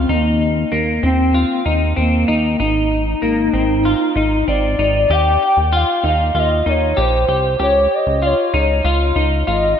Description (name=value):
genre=dream pop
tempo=96 BPM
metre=4/4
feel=straight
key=Eb mixolydian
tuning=A4 = 439 Hz
part: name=hollow clarinet-like synth lead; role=melody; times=0.0-9.8 s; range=Bb3 to G5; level=-17 LUFS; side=equal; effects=chorus, ping-pong delay
part: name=semi-hollow electric guitar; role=arpeggios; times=0.0-9.8 s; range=Bb3 to G4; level=-19 LUFS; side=left 2 dB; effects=analog chorus, ping-pong delay
part: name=chorused synth bass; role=bass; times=0.0-9.8 s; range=Ab1 to Eb2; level=-19 LUFS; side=equal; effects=none
room=wet lush hall reverb, RT60 3.1 s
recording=dreamy mix soaked in reverb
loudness=-14 LUFS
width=side -8 dB against mid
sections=0.0-5.1 A section; 5.1-9.8 B section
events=none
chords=0.1 Eb5; 2.6 Abadd9; 5.1 Eb6; 7.6 Db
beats=| 0.10 0.73 1.35 1.98 | 2.60 3.23 3.85 4.48 | 5.10 5.73 6.35 6.98 | 7.60 8.23 8.85 9.48